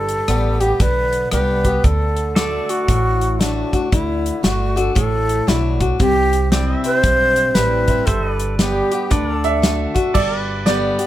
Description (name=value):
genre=honky-tonk and classic country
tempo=116 BPM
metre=4/4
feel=swing 63% on 8ths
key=D mixolydian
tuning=A4 = 441 Hz
part: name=breathy alto flute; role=melody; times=0.0-10.0 s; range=D4 to C5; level=-19 LUFS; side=right 1 dB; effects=none
part: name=picked swing-style acoustic guitar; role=accompaniment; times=0.0-11.1 s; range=G2 to G4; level=-23 LUFS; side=left 4 dB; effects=none
part: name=upright bass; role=bass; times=0.0-10.9 s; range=G1 to D2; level=-21 LUFS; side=right 1 dB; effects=none
part: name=natural country drum kit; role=drums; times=0.1-11.1 s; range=crash cymbal, hi-hat, kick drum, rim click, snare drum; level=-20 LUFS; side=equal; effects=none
part: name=pedal steel guitar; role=sustained chords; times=2.4-11.1 s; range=C4 to E5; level=-27 LUFS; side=right 1 dB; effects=none
part: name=bright upright piano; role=second line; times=9.4-11.1 s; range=D5 to E5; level=-21 LUFS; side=right 6 dB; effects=none
room=light reverb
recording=none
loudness=-15 LUFS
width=side -13 dB against mid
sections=0.0-10.2 A section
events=none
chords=0.0 G; 1.8 D; 6.0 C; 8.1 G; 9.1 D; 10.2 G